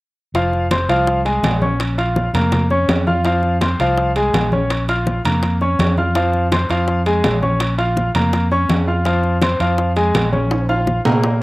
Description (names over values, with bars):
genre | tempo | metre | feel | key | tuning
latin, salsa | 165 BPM | 4/4 | straight | F minor | A4 = 439 Hz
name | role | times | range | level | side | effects
fingered electric bass | bass | 0.3-11.4 s | F1 to Bb2 | -19 LUFS | equal | none
bongos | percussion | 0.3-11.4 s | none | -23 LUFS | left 2 dB | none
congas | percussion | 0.3-11.4 s | none | -24 LUFS | left 1 dB | none
timbales | percussion | 0.3-11.3 s | none | -25 LUFS | right 3 dB | none
bright grand piano | accompaniment | 0.4-11.4 s | F3 to F6 | -18 LUFS | left 1 dB | none
room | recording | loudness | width
little or no reverb | recorded outdoors, with no room sound | -15 LUFS | side -20 dB against mid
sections
0.3-11.4 A section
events
drum fill 10.5-11.4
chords
0.3 Fm; 1.8 Bbm; 3.3 Fm; 4.7 Bbm; 6.2 Fm; 7.6 Bbm; 9.1 Fm; 10.5 Bbm